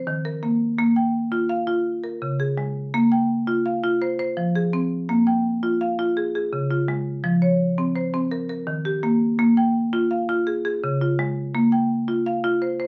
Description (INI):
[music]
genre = southern african traditional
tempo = 112 BPM (dotted quarters)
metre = 12/8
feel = straight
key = Bb dorian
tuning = A4 = 438 Hz
[part]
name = marimba with hard mallets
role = solo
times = 0.0-12.9 s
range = Db3 to G5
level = -22 LUFS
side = equal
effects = none
[sound]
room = wet studio reverb, RT60 0.5 s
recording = heard from further back in the room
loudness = -22 LUFS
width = mono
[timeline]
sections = 0.0-2.9 A section; 2.9-12.9 B section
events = none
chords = 0.0 Eb5; 0.8 Bb5; 1.9 Db; 2.9 Bb5; 4.0 Fm; 5.1 Bb5; 6.2 Db; 7.2 F5; 8.3 Eb; 9.4 Bb5; 10.5 Db; 11.5 Bb5